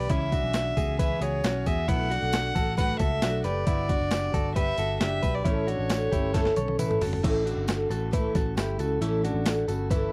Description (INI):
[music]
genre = jangly indie pop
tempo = 135 BPM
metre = 4/4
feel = straight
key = unclear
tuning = A4 = 440 Hz
[part]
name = warm violin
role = melody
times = 0.0-7.0 s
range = C#5 to F#5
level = -33 LUFS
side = equal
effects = slapback echo
[part]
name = fingerpicked twelve-string acoustic guitar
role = accompaniment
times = 0.0-10.1 s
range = A2 to A4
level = -34 LUFS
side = equal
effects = lush chorus
[part]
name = direct-recorded clean electric guitar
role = arpeggios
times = 0.0-10.1 s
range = B3 to C#5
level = -34 LUFS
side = equal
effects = slapback echo
[part]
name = vintage muted picked electric bass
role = bass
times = 0.0-10.1 s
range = F#1 to E2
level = -33 LUFS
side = equal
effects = none
[part]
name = boom bap sampler-style drum kit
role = drums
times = 0.1-10.0 s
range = crash cymbal, hi-hat, kick drum, snare drum, toms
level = -31 LUFS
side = equal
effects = overdrive
[part]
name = tambourine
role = percussion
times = 0.1-10.0 s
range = none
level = -50 LUFS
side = equal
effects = none
[sound]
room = little or no reverb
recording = dry, close 1970s-style studio recording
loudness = -26 LUFS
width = mono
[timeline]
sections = 0.0-7.2 A section; 7.2-10.1 B section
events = drum fill 6.3-7.2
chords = 0.1 C#m7; 1.9 Bm7; 3.7 Gmaj7; 5.5 A